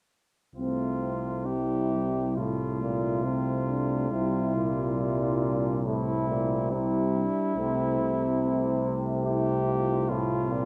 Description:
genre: classical, hymn-like piece for brass band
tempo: 70 BPM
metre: 4/4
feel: rubato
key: unclear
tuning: A4 = 435 Hz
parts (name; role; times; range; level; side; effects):
- mellow cornet; melody; 0.6-10.7 s; E4 to G4; -35 LUFS; equal; none
- dark French horn section; second line; 0.6-10.7 s; C4 to F4; -34 LUFS; equal; none
- clear euphonium; accompaniment; 0.6-10.7 s; A2 to C3; -34 LUFS; equal; none
- dark trombone section; accompaniment; 0.6-10.7 s; G3 to C4; -37 LUFS; equal; none
- mellow tuba; bass; 0.6-10.7 s; C2; -33 LUFS; equal; none
room: moderate recital hall reverb, RT60 1.4 s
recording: dark, warm production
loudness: -28 LUFS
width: mono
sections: 0.6-10.7 A section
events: none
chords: 0.6 C7; 7.6 F/C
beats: | 0.56 1.47 2.37 3.25 | 4.12 4.99 5.86 6.72 | 7.57 8.41 9.26 10.10

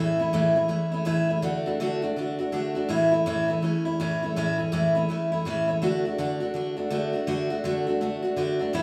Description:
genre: rock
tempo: 164 BPM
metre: 4/4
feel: swing 62% on 8ths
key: unclear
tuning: A4 = 440 Hz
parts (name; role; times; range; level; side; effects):
- picked steel-string acoustic guitar; solo; 0.0-8.8 s; A2 to F#4; -26 LUFS; equal; none
room: wet studio reverb, RT60 0.8 s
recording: band playing live in one room, studio reverb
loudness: -26 LUFS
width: mono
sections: 0.0-8.8 A section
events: none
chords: 0.0 A; 1.4 D; 2.9 A; 5.8 D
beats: 0.34 0.71 1.07 | 1.44 1.80 2.17 2.53 | 2.90 3.26 3.63 3.99 | 4.36 4.72 5.09 5.45 | 5.82 6.18 6.55 6.91 | 7.28 7.64 8.00 8.37 | 8.73

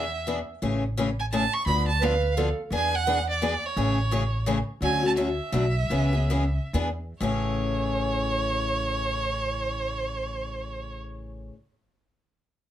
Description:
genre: acoustic string swing (jazz manouche)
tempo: 120-172 BPM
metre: 3/4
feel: swing 60% on 8ths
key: A major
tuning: A4 = 439 Hz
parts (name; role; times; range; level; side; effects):
- rich violin; melody; 0.0-11.0 s; C#5 to C#6; -29 LUFS; right 4 dB; plate reverb
- picked steel-string acoustic guitar; accompaniment; 0.0-11.6 s; A2 to A4; -28 LUFS; left 3 dB; none
- upright bass; bass; 0.0-11.5 s; A1 to E2; -28 LUFS; equal; none
- breathy clarinet; second line; 2.0-2.6 s; A4 to B4; -27 LUFS; right 6 dB; none
room: moderate club reverb, RT60 0.5 s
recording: none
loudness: -24 LUFS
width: side -11 dB against mid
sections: 0.0-4.8 A section; 4.8-7.2 B section; 7.2-10.2 C section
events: slowing down 4.8-7.2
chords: 0.0 E7; 0.6 Amaj7; 1.7 Dm6; 2.7 E9; 3.8 Amaj7; 4.8 Dmaj9; 5.5 Bm7; 5.9 C#m7; 6.7 E7; 7.2 Amaj7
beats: 0.27 | 0.62 0.97 1.32 | 1.67 2.02 2.37 | 2.72 3.07 3.42 | 3.76 4.11 4.46 | 4.81 5.16 5.52 | 5.90 6.30 6.73 | 7.21 7.70 8.20 | 8.70 9.20 9.70

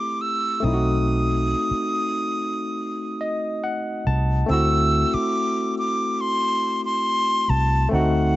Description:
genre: contemporary R&B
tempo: 70 BPM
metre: 4/4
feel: straight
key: unclear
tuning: A4 = 442 Hz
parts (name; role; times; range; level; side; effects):
- breathy silver concert flute; melody; 0.0-8.4 s; F#5 to E6; -23 LUFS; equal; none
- barky tine electric piano; accompaniment; 0.0-8.4 s; A3 to A5; -25 LUFS; left 1 dB; medium stereo tremolo
- vintage muted fingered electric bass; bass; 0.6-8.4 s; B1 to D2; -21 LUFS; equal; none
room: light reverb, small room reverb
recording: nothing above 7.7 kHz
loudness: -20 LUFS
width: side -17 dB against mid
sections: 0.0-4.5 A section; 4.5-8.4 B section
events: tine electric piano fill 2.8-4.5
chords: 0.0 D7sus4; 0.6 B7b9; 4.5 D7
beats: 0.20 | 1.06 1.92 2.77 3.63 | 4.49 5.35 6.20 7.06 | 7.92

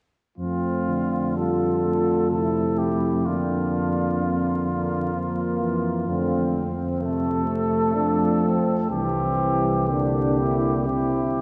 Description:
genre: classical, hymn-like piece for brass band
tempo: 63 BPM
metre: 3/4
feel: rubato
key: F major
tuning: A4 = 442 Hz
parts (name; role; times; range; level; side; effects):
- warm cornet; melody; 0.4-11.4 s; F4 to A4; -30 LUFS; equal; none
- warm French horn section; second line; 0.4-11.4 s; A3 to F4; -30 LUFS; equal; none
- dark euphonium; accompaniment; 0.4-11.4 s; G3 to C4; -31 LUFS; equal; none
- warm trombone; accompaniment; 0.4-11.4 s; C3 to F3; -32 LUFS; equal; none
- mellow tuba; bass; 0.4-11.4 s; C2 to F2; -29 LUFS; equal; none
room: wet church reverb, RT60 3.6 s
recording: heard from further back in the room, vinyl crackle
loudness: -23 LUFS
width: mono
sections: 0.4-11.4 A section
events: none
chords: 0.4 F; 3.3 Bbadd9/F; 6.1 F; 8.9 C9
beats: | 0.39 1.37 2.33 | 3.28 4.23 5.17 | 6.08 7.01 7.95 | 8.91 9.89 10.87

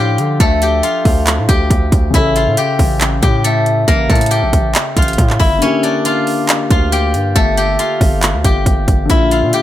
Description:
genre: hip hop, trap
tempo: 138 BPM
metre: 4/4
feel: half-time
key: D harmonic minor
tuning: A4 = 440 Hz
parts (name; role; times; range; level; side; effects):
- steel-string zither; melody; 0.0-9.6 s; A3 to G5; -16 LUFS; left 2 dB; none
- dark baby grand piano; accompaniment; 0.0-9.6 s; Bb2 to A4; -21 LUFS; left 3 dB; none
- distorted 808-style bass; bass; 0.0-9.5 s; G1 to D3; -16 LUFS; equal; distortion
- trap drum kit; drums; 0.2-9.6 s; handclaps, hi-hat, kick drum; -14 LUFS; right 1 dB; none
room: small room reverb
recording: none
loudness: -11 LUFS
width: side -13 dB against mid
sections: 0.0-9.6 A section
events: kick muted 5.6-6.5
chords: 0.0 Dm; 2.1 A; 5.6 Gm; 9.1 Bb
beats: | 0.40 0.84 1.27 1.71 | 2.14 2.58 3.01 3.44 | 3.88 4.31 4.75 5.18 | 5.62 6.05 6.49 6.92 | 7.36 7.79 8.23 8.66 | 9.10 9.53

